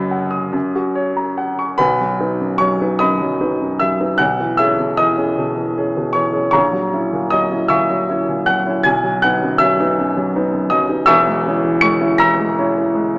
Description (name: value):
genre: classical, romantic character piece for solo piano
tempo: 47-55 BPM (dotted quarters)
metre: 6/8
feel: rubato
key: B major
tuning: A4 = 444 Hz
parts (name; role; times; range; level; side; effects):
- warm baby grand piano; solo; 0.0-13.2 s; E1 to C#7; -14 LUFS; equal; none
room: moderate concert hall reverb, RT60 2.4 s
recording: small speaker sound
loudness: -14 LUFS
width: side -26 dB against mid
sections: 0.0-1.8 A section; 1.8-13.2 B section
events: none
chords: 0.0 B/F#; 0.5 F#; 1.8 B; 4.2 C#m7/B; 6.5 F#7/A#; 8.9 B; 11.1 C#m/E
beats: 0.54 | 1.80 3.02 | 4.20 5.38 | 6.54 7.71 | 8.86 9.99 | 11.09 12.20